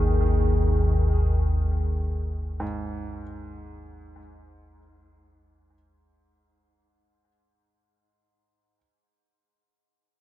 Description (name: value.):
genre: dark ambient drone.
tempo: free time.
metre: none.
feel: none.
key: unclear.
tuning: A4 = 440 Hz.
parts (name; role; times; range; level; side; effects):
warm grand piano; arpeggios; 0.0-8.8 s; G#2 to G#4; -35 LUFS; right 3 dB; ping-pong delay.
deep rumbling drone; drone; 0.0-5.8 s; G#1 to D#2; -23 LUFS; equal; built-in reverb, lush chorus.
quartz singing bowl; texture; 0.0-5.8 s; G#4; -32 LUFS; left 7 dB; none.
room: light reverb.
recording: none.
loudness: -22 LUFS.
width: side -14 dB against mid.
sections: 0.0-5.7 A section.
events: fade-out 0.0-5.7.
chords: 0.0 G#5.